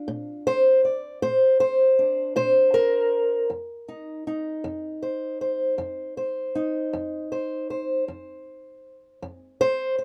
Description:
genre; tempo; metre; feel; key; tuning
acoustic country blues, solo or duo; 52 BPM (dotted quarters); 12/8; straight; unclear; A4 = 441 Hz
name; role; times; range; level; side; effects
fingerpicked old ladder-braced acoustic guitar; solo; 0.0-10.0 s; F2 to D5; -24 LUFS; equal; none
room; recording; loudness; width
little or no reverb; close, detailed microphones; -24 LUFS; mono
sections
0.0-10.0 A section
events
none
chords
0.0 Bb; 3.5 F5

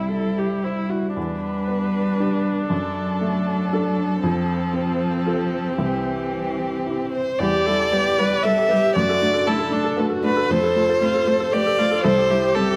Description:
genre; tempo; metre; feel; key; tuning
neoclassical piano and strings; 116 BPM; 3/4; rubato; E minor; A4 = 441 Hz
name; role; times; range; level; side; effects
warm violin; melody; 0.0-12.8 s; E4 to E5; -25 LUFS; equal; none
warm cello; second line; 0.0-12.6 s; E3 to A3; -27 LUFS; equal; none
felt-muted upright piano; accompaniment; 0.0-12.8 s; C2 to C5; -28 LUFS; equal; none
warm viola; accompaniment; 0.0-12.8 s; C4 to B4; -29 LUFS; equal; none
room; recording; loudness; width
light reverb; none; -21 LUFS; mono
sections
0.0-1.2 A section; 1.2-7.4 B section; 7.4-12.8 C section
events
none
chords
0.0 C; 1.2 Em7; 2.7 D/F#; 4.2 F; 5.8 C; 7.4 Em7; 9.0 D/F#; 10.5 F; 12.0 C

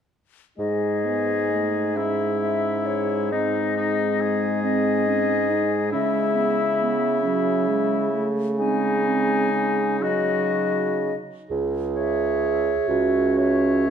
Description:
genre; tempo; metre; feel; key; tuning
classical, slow romantic movement for wind quintet; 38-47 BPM (dotted quarters); 6/8; rubato; C# minor; A4 = 440 Hz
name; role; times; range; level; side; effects
concert flute; melody; 0.6-13.9 s; C#5 to G#5; -26 LUFS; left 7 dB; none
warm oboe; second line; 0.6-13.9 s; D#4 to C#5; -29 LUFS; left 4 dB; none
mellow French horn; accompaniment; 0.6-13.9 s; F#3 to C#4; -28 LUFS; left 2 dB; none
mellow clarinet; accompaniment; 0.6-13.9 s; B3 to G#4; -27 LUFS; right 9 dB; none
clear bassoon; bass; 0.6-13.9 s; C#2 to C#3; -25 LUFS; right 2 dB; none
room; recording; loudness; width
wet recital hall reverb, RT60 1.8 s; dark, warm production; -20 LUFS; side -8 dB against mid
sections
0.6-11.5 A section; 11.5-13.9 B section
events
none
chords
0.6 C#m/G#; 3.3 G#; 5.9 C#m; 8.6 G#7/C#; 11.5 C#m

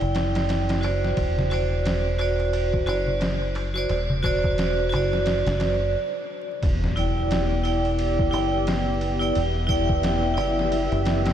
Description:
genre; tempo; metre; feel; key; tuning
trip hop; 88 BPM; 4/4; swing 60% on 16ths; E minor; A4 = 436 Hz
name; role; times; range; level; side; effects
vibraphone with hard mallets; accompaniment; 0.0-11.3 s; E4 to G5; -25 LUFS; right 1 dB; harmonic tremolo, tape echo
deep dub fingered electric bass; bass; 0.0-11.3 s; E1 to F#1; -26 LUFS; equal; none
trip hop sampler-style drum kit; drums; 0.0-11.3 s; kick drum, ride cymbal, snare drum; -29 LUFS; equal; overdrive
darbuka; percussion; 0.0-5.9 s; none; -34 LUFS; equal; none
dark analog pad; sustained chords; 6.6-11.3 s; B3 to E5; -29 LUFS; left 2 dB; chorus
impact; sound effects; 6.6-9.4 s; none; -31 LUFS; equal; none
room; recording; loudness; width
moderate huge ambient reverb, RT60 7.8 s; dreamy mix soaked in reverb, vinyl crackle; -21 LUFS; side -10 dB against mid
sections
0.0-6.6 A section; 6.6-11.3 B section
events
stop 5.9-6.6; impact 6.6-9.4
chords
0.0 Em7; 1.2 D9/E; 6.6 Em7

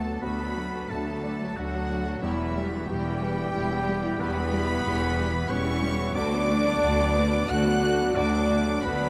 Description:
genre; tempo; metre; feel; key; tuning
cinematic, emotional film score for orchestra; 90 BPM; 3/4; rubato; unclear; A4 = 440 Hz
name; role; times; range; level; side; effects
rich symphonic violin section; melody; 0.0-9.1 s; E5 to F#6; -38 LUFS; equal; none
clear symphonic violin section; second line; 0.0-9.1 s; B3 to A4; -42 LUFS; equal; none
warm oboe; second line; 0.0-9.1 s; E4 to F#5; -34 LUFS; equal; none
clear symphonic viola section; accompaniment; 0.0-9.1 s; D3 to B3; -37 LUFS; equal; none
felt-muted upright piano; accompaniment; 0.0-9.1 s; D2 to D5; -36 LUFS; equal; none
dark French horn section; sustained chords; 0.0-9.1 s; E3 to F#4; -32 LUFS; equal; none
clear symphonic cello section; bass; 0.0-9.1 s; D2 to E2; -33 LUFS; equal; none
rich symphonic double bass section; bass; 0.0-9.1 s; E1 to D2; -34 LUFS; equal; none
room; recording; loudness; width
wet cathedral reverb, RT60 7.3 s; in a vast, echoing space; -26 LUFS; mono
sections
0.0-9.1 A section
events
none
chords
0.2 D; 2.2 Em; 6.2 Bm7/D

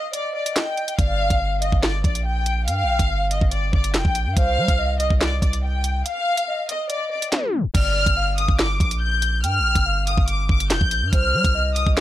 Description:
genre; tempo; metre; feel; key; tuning
hip hop, drill; 142 BPM; 4/4; half-time; G minor; A4 = 438 Hz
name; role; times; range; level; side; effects
warm studio violin section; melody; 0.0-12.0 s; D5 to G6; -24 LUFS; left 2 dB; analog delay
hollow clarinet-like synth lead; second line; 0.0-11.9 s; C5 to G5; -29 LUFS; left 1 dB; chorus, analog delay
drill drum kit; drums; 0.1-12.0 s; crash cymbal, handclaps, hi-hat, kick drum, snare drum; -21 LUFS; equal; none
long sustained 808-style bass; bass; 1.0-12.0 s; F1 to G3; -23 LUFS; equal; none
room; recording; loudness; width
little or no reverb; dry, gritty hardware recording, tape stop; -18 LUFS; side -13 dB against mid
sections
0.0-7.7 A section; 7.7-12.0 B section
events
break 0.0-1.0, 6.1-7.7; tape stop 7.3-7.7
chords
0.0 N.C.; 1.0 Gm7; 4.4 Cm; 7.7 Gm7; 11.1 Cm

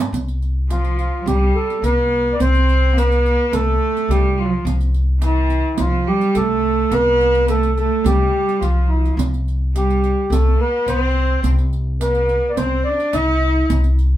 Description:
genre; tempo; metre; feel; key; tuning
Arabic maqam ensemble; 106 BPM; 4/4; straight; C maqam rast; A4 = 440 Hz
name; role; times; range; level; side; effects
upright bass; bass; 0.0-14.2 s; C2; -18 LUFS; equal; none
riq; percussion; 0.1-14.1 s; none; -27 LUFS; right 6 dB; none
mellow accordion; melody; 0.7-13.7 s; E4-50c to E5-50c; -19 LUFS; equal; none
bright chamber cello section; second line; 0.7-13.7 s; E3-50c to E4-50c; -22 LUFS; right 2 dB; none
room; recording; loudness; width
wet small room ambience, RT60 0.5 s; heard from further back in the room; -15 LUFS; side -13 dB against mid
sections
0.1-14.2 A section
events
none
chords
none

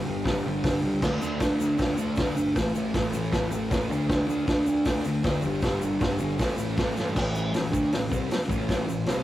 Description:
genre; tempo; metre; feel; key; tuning
garage rock duo or trio; 157 BPM; 4/4; straight; unclear; A4 = 440 Hz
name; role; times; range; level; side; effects
thick fuzz guitar; riff; 0.0-9.2 s; G2 to D4; -26 LUFS; equal; distortion
fuzz picked electric bass; bass; 0.0-9.2 s; G1 to G2; -36 LUFS; equal; overdrive
vintage drum kit; drums; 0.3-9.2 s; crash cymbal, hi-hat, kick drum, snare drum; -28 LUFS; equal; none
egg shaker; percussion; 1.0-9.2 s; none; -48 LUFS; left 5 dB; none
room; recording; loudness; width
light reverb; rough rehearsal-room recording, tube saturation; -24 LUFS; side -14 dB against mid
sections
0.0-7.2 A section; 7.2-9.2 B section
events
drum fill 7.0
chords
0.0 G5; 1.0 D5; 2.6 A5; 3.9 D5; 5.4 G5; 6.4 A5

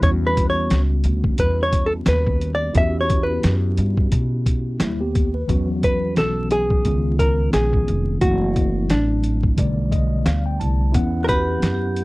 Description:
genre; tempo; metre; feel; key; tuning
hip hop, jazz-hop; 88 BPM; 4/4; swing 59% on 16ths; E dorian; A4 = 439 Hz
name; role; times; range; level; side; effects
hollow-body jazz guitar; melody; 0.0-12.0 s; D4 to E5; -22 LUFS; equal; none
mellow tine electric piano; accompaniment; 0.0-12.0 s; D3 to A5; -25 LUFS; equal; medium stereo tremolo
upright bass; bass; 0.0-12.0 s; E#1 to B2; -21 LUFS; equal; none
boom bap sampler-style drum kit; drums; 0.0-12.0 s; hi-hat, kick drum, snare drum; -21 LUFS; equal; none
vibraphone with hard mallets; second line; 11.2-12.0 s; F#4 to G4; -26 LUFS; right 3 dB; tape echo
room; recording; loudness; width
little or no reverb; dry, close 1970s-style studio recording, vinyl crackle; -17 LUFS; side -21 dB against mid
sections
0.0-5.5 A section; 5.5-12.0 B section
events
hollow-body jazz guitar solo 0.0-5.5; tine electric piano fill 9.6-10.9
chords
0.0 Em69; 5.5 Esus2; 6.8 C#7; 8.2 F#m7b5; 9.6 B7alt; 10.9 Em69

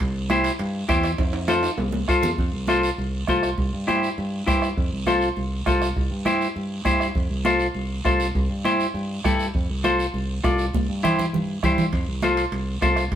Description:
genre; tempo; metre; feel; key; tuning
latin, cumbia; 201 BPM; 4/4; straight; F major; A4 = 443 Hz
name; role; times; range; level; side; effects
fingered electric bass; bass; 0.0-13.2 s; C2 to G2; -27 LUFS; equal; none
bombo; percussion; 0.0-13.2 s; none; -26 LUFS; right 1 dB; none
congas; percussion; 0.0-13.2 s; none; -30 LUFS; right 1 dB; none
guiro; percussion; 0.0-13.2 s; none; -37 LUFS; right 4 dB; none
timbales; percussion; 0.0-2.3, 11.9-13.2 s; none; -34 LUFS; right 3 dB; none
semi-hollow electric guitar; accompaniment; 0.3-13.0 s; E4 to D5; -22 LUFS; left 1 dB; none
room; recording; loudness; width
wet stone room reverb, RT60 1.0 s; band playing live in one room; -20 LUFS; side -10 dB against mid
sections
0.0-2.4 A section; 2.4-13.2 B section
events
drum fill 1.2-2.4, 10.7-11.9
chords
0.0 C; 1.2 F; 3.6 C; 4.8 F; 6.0 C; 7.2 F; 8.3 C; 9.5 F; 10.7 C; 11.9 F

